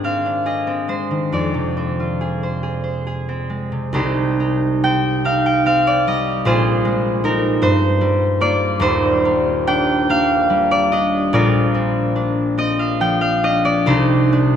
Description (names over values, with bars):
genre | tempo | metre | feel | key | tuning
classical, solo harp piece | 44-52 BPM (dotted quarters) | 6/8 | rubato | C minor | A4 = 435 Hz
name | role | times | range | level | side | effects
concert harp | solo | 0.0-14.6 s | Eb1 to G5 | -15 LUFS | equal | none
room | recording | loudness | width
wet church reverb, RT60 3.6 s | none | -15 LUFS | side -8 dB against mid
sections
0.0-4.0 A section; 4.0-14.6 B section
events
none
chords
0.0 Abmaj7#11; 1.3 Fm6; 4.0 Cmadd9; 6.5 Bb9sus4; 7.6 Gm7; 8.8 Ebmaj7; 11.3 Bbadd9; 13.9 Cmadd9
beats
0.04 | 1.33 2.65 | 3.97 5.27 | 6.46 7.62 | 8.82 10.11 | 11.34 12.58 | 13.88